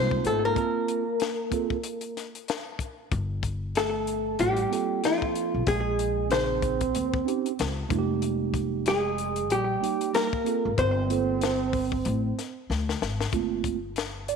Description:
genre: hip hop, jazz-hop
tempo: 94 BPM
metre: 4/4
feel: swing 58% on 16ths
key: G phrygian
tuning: A4 = 435 Hz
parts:
  - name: hollow-body jazz guitar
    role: melody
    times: 0.0-12.7 s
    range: F4 to C5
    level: -27 LUFS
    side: left 2 dB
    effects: slapback echo
  - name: breathy trombone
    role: second line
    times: 0.0-12.7 s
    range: F3 to C4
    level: -32 LUFS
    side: right 10 dB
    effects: slapback echo
  - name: mellow tine electric piano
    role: accompaniment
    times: 0.0-14.4 s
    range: Db3 to D5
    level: -30 LUFS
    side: right 13 dB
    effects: medium stereo tremolo
  - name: upright bass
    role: bass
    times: 0.0-14.4 s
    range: F1 to Eb2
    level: -30 LUFS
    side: left 2 dB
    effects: none
  - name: compact cocktail drum kit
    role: drums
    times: 0.1-14.4 s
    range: hi-hat, kick drum, snare drum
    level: -32 LUFS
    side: left 6 dB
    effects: none
room: light reverb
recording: 1960s-style stereo with parts hard left and right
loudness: -25 LUFS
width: side -6 dB against mid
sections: 0.0-3.1 A section; 3.1-13.3 B section; 13.3-14.4 C section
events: break 0.6-3.1; drum fill 12.7-13.3; tine electric piano solo 13.3-14.4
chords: 0.0 Fm11; 0.6 Bbsus2; 3.1 Gm11; 5.7 Bbm11; 7.9 Fm11; 10.8 Gm11

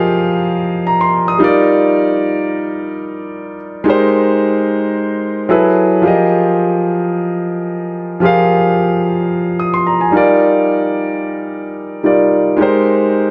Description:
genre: amapiano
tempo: 110 BPM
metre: 4/4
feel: straight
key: F dorian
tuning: A4 = 440 Hz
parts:
  - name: warm concert grand piano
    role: solo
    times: 0.0-13.3 s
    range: F3 to Eb6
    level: -14 LUFS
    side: equal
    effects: none
room: light reverb, small room ambience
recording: dark, warm production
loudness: -14 LUFS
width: mono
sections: 0.0-6.0 A section; 6.0-13.3 B section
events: drop 0.0-6.0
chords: 0.0 Fm11; 1.4 Ebmaj9/G; 3.9 Abmaj9; 5.5 Gbm11; 6.0 Fm11; 10.1 Ebmaj9/G; 12.6 Abmaj9

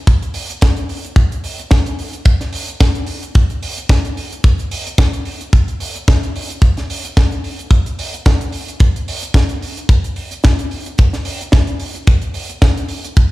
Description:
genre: nu-disco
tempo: 110 BPM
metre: 4/4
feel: swing 56% on 16ths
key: none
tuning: none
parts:
  - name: kick drum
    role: drums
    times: 0.1-13.3 s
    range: none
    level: -12 LUFS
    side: equal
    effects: none
  - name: tight funk drum kit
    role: drums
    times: 0.1-13.3 s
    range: cabasa, hi-hat, snare drum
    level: -23 LUFS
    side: equal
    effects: none
room: little or no reverb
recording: played on a big sound system in a bare room, stone room reverb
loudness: -14 LUFS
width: side -19 dB against mid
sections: 0.0-13.3 A section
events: none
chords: none

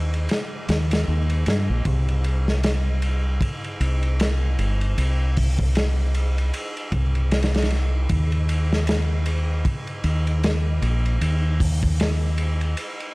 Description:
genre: trip hop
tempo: 77 BPM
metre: 4/4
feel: swing 59% on 16ths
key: C minor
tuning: A4 = 440 Hz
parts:
  - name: deep dub fingered electric bass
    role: bass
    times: 0.0-12.7 s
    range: G1 to G2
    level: -20 LUFS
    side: equal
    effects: tube saturation
  - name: crunchy breakbeat drum kit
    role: drums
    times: 0.1-13.1 s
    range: hi-hat, kick drum, ride cymbal, snare drum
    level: -25 LUFS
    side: equal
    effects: none
room: little or no reverb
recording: vinyl crackle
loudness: -20 LUFS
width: side -24 dB against mid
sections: 0.0-13.1 A section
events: none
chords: none

